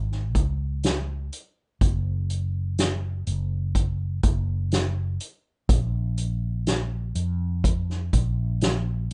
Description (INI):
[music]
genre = pop ballad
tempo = 62 BPM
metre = 4/4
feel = straight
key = unclear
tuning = A4 = 440 Hz
[part]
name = fretless electric bass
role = bass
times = 0.0-9.1 s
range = F#1 to E#2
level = -28 LUFS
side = equal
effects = subtle chorus
[part]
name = soft-mallet drum kit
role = drums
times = 0.1-9.1 s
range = hi-hat, kick drum, snare drum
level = -26 LUFS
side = equal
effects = none
[sound]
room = light reverb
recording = rough home demo mix, nothing above 10.4 kHz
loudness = -26 LUFS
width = mono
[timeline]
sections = 0.0-9.1 A section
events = none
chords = none